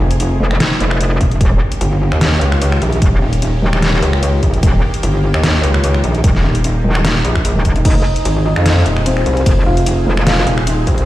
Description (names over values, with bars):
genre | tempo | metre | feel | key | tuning
heavy wobble dubstep | 149 BPM | 4/4 | swing 53% on 16ths, half-time | unclear | A4 = 441 Hz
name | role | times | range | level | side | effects
supersaw pad | sustained chords | 0.0-11.1 s | Eb3 to Ab4 | -23 LUFS | equal | phaser, sidechain pumping
metallic wobble bass | bass | 0.0-11.1 s | Eb1 to F2 | -14 LUFS | equal | chorus, overdrive
dubstep drum kit | drums | 0.1-11.1 s | crash cymbal, finger snaps, hi-hat, ride cymbal, snare drum | -19 LUFS | equal | none
metallic wobble bass | bass | 0.4-10.5 s | Eb1 to F1 | -14 LUFS | equal | chorus, overdrive
electronic kick drum | drums | 1.2-11.0 s | none | -14 LUFS | equal | none
felt-muted upright piano | melody | 7.8-10.6 s | C4 to F5 | -20 LUFS | equal | ping-pong delay
room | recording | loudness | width
digital ambience | played on a big sound system in a bare room, large studio reverb | -12 LUFS | side -15 dB against mid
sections
0.0-11.1 A section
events
none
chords
0.0 Fm7; 1.4 Eb7; 7.8 Fm7